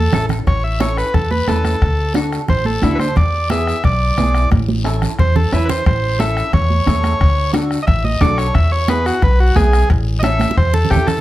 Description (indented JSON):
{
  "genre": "latin, cumbia",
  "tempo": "178 BPM",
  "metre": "4/4",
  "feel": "straight",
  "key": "A major",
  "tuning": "A4 = 440 Hz",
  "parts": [
    { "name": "combo organ", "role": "melody", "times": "0.0-11.2 s", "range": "E4 to E5", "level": "-19 LUFS", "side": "equal", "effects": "none" },
    { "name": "upright bass", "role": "bass", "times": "0.0-11.2 s", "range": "A1 to E2", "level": "-17 LUFS", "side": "equal", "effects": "none" },
    { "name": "clean electric guitar", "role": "accompaniment", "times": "0.1-11.2 s", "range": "B3 to B4", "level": "-22 LUFS", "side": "equal", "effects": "analog chorus" },
    { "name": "bombo", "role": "percussion", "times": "0.1-11.2 s", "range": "none", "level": "-18 LUFS", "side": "left 1 dB", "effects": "none" },
    { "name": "congas", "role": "percussion", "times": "0.1-11.2 s", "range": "none", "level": "-22 LUFS", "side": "right 5 dB", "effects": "none" },
    { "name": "guiro", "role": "percussion", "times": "0.1-11.2 s", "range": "none", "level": "-34 LUFS", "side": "left 5 dB", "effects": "none" }
  ],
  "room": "light reverb",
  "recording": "none",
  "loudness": "-13 LUFS",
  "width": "side -15 dB against mid",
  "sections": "0.5-11.2 A section",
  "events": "drum fill 0.0-0.5, 4.5-5.9, 10.4-11.2; transistor combo organ solo 0.5-11.2",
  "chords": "0.5 A; 1.8 D; 3.2 E7; 4.5 A; 7.2 D; 8.6 E; 9.9 A"
}